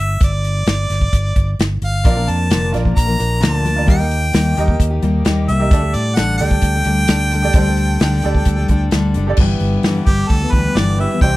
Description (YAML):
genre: folk rock and heartland rock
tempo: 131 BPM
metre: 4/4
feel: straight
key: unclear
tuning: A4 = 440 Hz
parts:
  - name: bright harmonica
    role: melody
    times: 0.0-11.4 s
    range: G4 to Bb5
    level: -21 LUFS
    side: equal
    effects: slapback echo
  - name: fingered electric bass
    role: bass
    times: 0.0-11.4 s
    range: F1 to A2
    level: -18 LUFS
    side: equal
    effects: none
  - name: natural country drum kit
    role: drums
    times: 0.2-11.3 s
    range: crash cymbal, hi-hat, kick drum, snare drum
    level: -16 LUFS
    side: equal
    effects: none
  - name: bright grand piano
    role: accompaniment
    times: 2.0-11.4 s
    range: E4 to Eb5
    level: -25 LUFS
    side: right 5 dB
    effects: none
  - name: picked steel-string acoustic guitar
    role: accompaniment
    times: 2.0-11.4 s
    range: G2 to Bb4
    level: -20 LUFS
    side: left 3 dB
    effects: none
room: little or no reverb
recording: dry, close 1970s-style studio recording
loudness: -13 LUFS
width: side -18 dB against mid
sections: 0.0-9.4 A section; 9.4-11.4 B section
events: harmonica solo 9.4-11.4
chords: 0.0 G5; 2.1 Bb; 3.9 Eb; 5.7 Dsus4; 9.4 G6